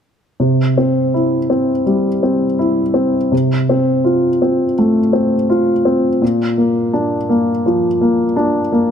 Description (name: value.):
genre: neoclassical minimalist piano.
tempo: 83 BPM.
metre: 4/4.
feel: rubato.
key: unclear.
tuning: A4 = 440 Hz.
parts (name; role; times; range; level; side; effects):
warm baby grand piano; solo; 0.4-8.9 s; Bb2 to F4; -13 LUFS; equal; none.
room: light reverb.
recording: close, detailed microphones.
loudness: -13 LUFS.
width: side -8 dB against mid.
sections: 0.4-8.9 A section.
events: none.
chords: 0.4 C; 3.3 F/C; 6.2 Bb.